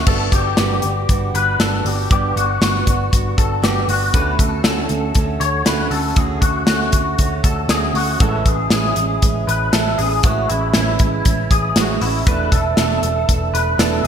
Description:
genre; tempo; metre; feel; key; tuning
jangly indie pop; 118 BPM; 4/4; straight; unclear; A4 = 440 Hz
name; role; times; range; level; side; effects
fingerpicked steel-string acoustic guitar; accompaniment; 0.0-14.1 s; E2 to F#4; -22 LUFS; right 7 dB; none
clean electric guitar; arpeggios; 0.0-14.1 s; E4 to C#5; -21 LUFS; left 4 dB; ensemble chorus
vintage muted picked electric bass; bass; 0.0-14.1 s; E1 to D2; -22 LUFS; equal; none
modern studio drum kit; drums; 0.1-14.1 s; crash cymbal, hi-hat, kick drum, snare drum; -18 LUFS; equal; gated reverb
room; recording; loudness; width
moderate lush hall reverb, RT60 2.1 s; bright 1980s-style digital production; -15 LUFS; side -8 dB against mid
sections
0.1-14.1 A section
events
none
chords
0.1 Gmaj7; 4.1 Dmaj7; 8.2 Amaj7; 12.3 E7sus4

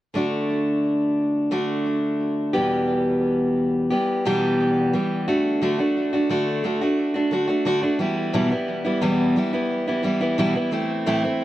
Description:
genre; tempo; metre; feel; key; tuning
pop; 88 BPM; 4/4; straight; unclear; A4 = 440 Hz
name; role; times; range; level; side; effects
picked steel-string acoustic guitar; solo; 0.1-11.4 s; E2 to G4; -20 LUFS; equal; tape echo
room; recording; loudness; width
moderate booth ambience, RT60 0.2 s; dry, close 1970s-style studio recording; -20 LUFS; side -14 dB against mid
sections
0.2-5.6 A section; 5.6-11.4 B section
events
none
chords
0.2 D; 2.5 Em; 5.3 D; 8.0 Em; 10.7 Am

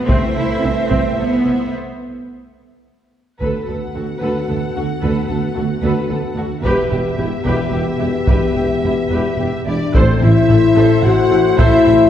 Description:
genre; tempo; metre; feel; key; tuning
cinematic, epic orchestral film score; 110 BPM; 3/4; straight; A dorian; A4 = 443 Hz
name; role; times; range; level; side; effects
rich symphonic violin section; melody; 0.0-12.1 s; C5 to F#5; -28 LUFS; left 2 dB; none
warm symphonic violin section; second line; 0.0-12.1 s; E4 to F#5; -25 LUFS; left 1 dB; none
rich symphonic cello section; bass; 0.0-11.9 s; D2 to E4; -25 LUFS; right 1 dB; none
clear symphonic viola section; accompaniment; 0.1-11.9 s; C4 to C5; -25 LUFS; right 1 dB; none
mellow French horn section; sustained chords; 0.1-12.1 s; B3 to E5; -18 LUFS; left 3 dB; none
warm trombone section; sustained chords; 0.1-1.7, 9.9-12.1 s; A2 to A3; -25 LUFS; right 3 dB; none
rich symphonic double bass section; bass; 0.1-11.9 s; E1 to D2; -22 LUFS; right 1 dB; none
solo taiko drums; drums; 0.1-12.1 s; none; -18 LUFS; equal; none
mellow tuba; bass; 3.4-12.0 s; E1 to D2; -23 LUFS; right 2 dB; none
clear woodwind section; sustained chords; 9.9-12.1 s; C4 to C5; -29 LUFS; right 1 dB; none
mellow trumpet; stabs; 9.9-12.1 s; C5; -26 LUFS; right 4 dB; none
timpani; percussion; 9.9-10.7 s; A2; -21 LUFS; left 1 dB; none
room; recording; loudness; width
wet scoring stage reverb, RT60 2.0 s; heard from further back in the room; -14 LUFS; side -10 dB against mid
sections
0.0-3.4 A section; 3.4-9.9 B section; 9.9-12.1 C section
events
break 1.7-3.4; drum fill 2.6-3.4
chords
0.1 Am/C; 3.4 D6; 6.6 Em; 9.9 Am

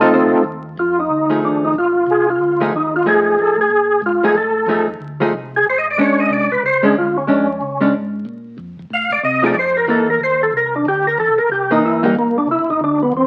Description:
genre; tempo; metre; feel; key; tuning
jazz; 185 BPM; 4/4; swing 63% on 8ths; unclear; A4 = 441 Hz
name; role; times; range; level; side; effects
percussive tonewheel organ; melody; 0.0-13.3 s; G3 to F5; -17 LUFS; equal; slow rotary speaker, overdrive, chorus vibrato
hollow-body jazz guitar; accompaniment; 0.0-12.1 s; E3 to Eb5; -20 LUFS; equal; none
mellow tonewheel organ; bass; 0.0-13.3 s; G1 to C3; -32 LUFS; equal; slow rotary speaker
room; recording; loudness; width
moderate studio reverb, RT60 1.0 s; very old 78 rpm record, vinyl crackle; -16 LUFS; mono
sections
0.8-13.3 A section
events
tonewheel organ solo 0.8-13.3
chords
0.0 F7; 0.8 F7#9; 6.0 Bb7#9; 8.6 F7; 9.9 C7#9

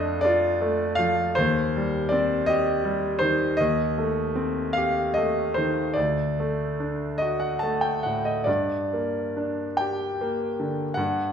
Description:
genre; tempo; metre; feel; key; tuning
classical, romantic nocturne for solo piano; 43-56 BPM (dotted quarters); 12/8; rubato; G minor; A4 = 440 Hz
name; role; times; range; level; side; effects
bright concert grand piano; solo; 0.0-11.3 s; D2 to A5; -22 LUFS; equal; none
room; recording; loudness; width
wet recital hall reverb, RT60 1.4 s; minimal, uncompressed stereo recording; -22 LUFS; side -7 dB against mid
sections
0.0-11.3 A section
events
none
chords
0.0 Dm/F; 1.4 Cm/Eb; 3.6 Am7b5/Eb; 6.0 D; 8.5 Gm

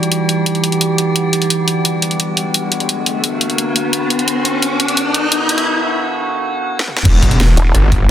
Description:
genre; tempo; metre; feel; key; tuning
dark technical drum and bass; 173 BPM; 4/4; straight; E minor; A4 = 440 Hz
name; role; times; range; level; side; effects
metallic inharmonic drone; sustained chords; 0.0-8.1 s; D3 to G4; -18 LUFS; right 1 dB; chorus, built-in reverb, sidechain pumping
drum and bass drum kit; drums; 0.0-8.0 s; crash cymbal, hi-hat, rim click, snare drum, toms; -17 LUFS; equal; none
riser and impact; sound effects; 2.5-8.1 s; none; -18 LUFS; equal; none
wide detuned saw bass; bass; 7.1-8.1 s; E1 to G1; -12 LUFS; equal; chorus, overdrive
electronic kick drum; drums; 7.1-8.0 s; none; -15 LUFS; equal; none
vowel-sweep wobble bass; bass; 7.6-7.7 s; E1; -13 LUFS; equal; chorus
room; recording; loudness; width
moderate lush hall reverb, RT60 2.7 s; dense, heavily limited modern master, high-pass filter; -13 LUFS; side -11 dB against mid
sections
0.0-7.1 A section; 7.1-8.1 B section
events
build-up 0.0-7.1; riser 2.5-5.7; break 5.7-7.1; drum fill 6.8; drop 7.1-8.1; impact 7.1-8.1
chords
0.0 Em; 1.5 Bm; 7.1 Emadd9

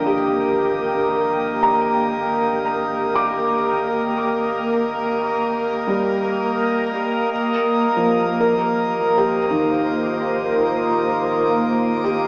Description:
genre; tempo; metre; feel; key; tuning
ambient; free time; none; none; Ab lydian; A4 = 440 Hz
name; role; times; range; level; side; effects
ethereal airy pad; sustained chords; 0.0-12.3 s; Bb3 to C5; -21 LUFS; equal; ensemble chorus, built-in reverb, phaser
felt-muted upright piano; arpeggios; 0.0-12.3 s; D3 to D6; -23 LUFS; equal; dub echo
warm sub bass; bass; 0.0-12.3 s; Ab1; -44 LUFS; equal; none
pedal harmonium; drone; 0.0-12.3 s; Bb3 to Eb5; -21 LUFS; equal; none
twinkling granular texture; texture; 9.1-12.3 s; D6; -37 LUFS; equal; built-in reverb
room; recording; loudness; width
wet echo chamber reverb, RT60 2.5 s; echo-heavy mix, small speaker sound; -17 LUFS; side -31 dB against mid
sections
0.0-7.3 A section; 7.3-12.3 B section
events
fade-in on synth texture 7.3-12.3; filter sweep on ambient pad 7.3-12.3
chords
0.0 Absus2; 7.3 Ab69

